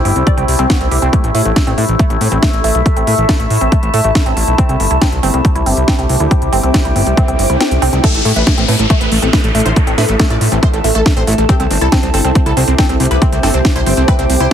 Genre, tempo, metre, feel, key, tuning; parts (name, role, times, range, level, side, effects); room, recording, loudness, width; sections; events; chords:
psychedelic trance; 139 BPM; 4/4; straight; A minor; A4 = 440 Hz
overtone-sweeping drone; sustained chords; 0.0-14.5 s; A3 to E4; -20 LUFS; left 1 dB; chorus, built-in reverb, sidechain pumping
granular cloud pad; texture; 0.0-14.5 s; G4 to A5; -21 LUFS; right 1 dB; built-in reverb, sidechain pumping
woody wave-folded pluck; riff; 0.1-14.5 s; A3 to D5; -20 LUFS; moving between left 4 dB and right 2 dB; chorus, auto-pan, sidechain pumping, digital delay
fat analog bass; bass; 0.1-14.5 s; G1 to A2; -15 LUFS; equal; tube saturation
techno drum kit; drums; 0.1-14.5 s; crash cymbal, hi-hat, snare drum; -20 LUFS; equal; overdrive
electronic kick drum; drums; 0.3-14.2 s; -13 LUFS; equal; overdrive
vowel-sweep wobble bass; second line; 1.7-3.2, 8.6-10.5 s; A3 to E4; -30 LUFS; right 2 dB
riser and downlifter; sound effects; 6.6-11.5 s; -22 LUFS; equal
supersaw stab; melody; 8.0-14.5 s; A3 to D5; -19 LUFS; right 1 dB; phaser, sidechain pumping, digital delay
light reverb, digital ambience; heavily compressed radio sound; -10 LUFS; side -9 dB against mid
0.0-8.0 A section; 8.0-14.5 B section
riser 6.6-8.0; kick drops out 7.6-8.0; drop 8.0-14.5
0.0 C5; 1.1 A5; 4.6 C5; 8.0 A5; 11.5 C5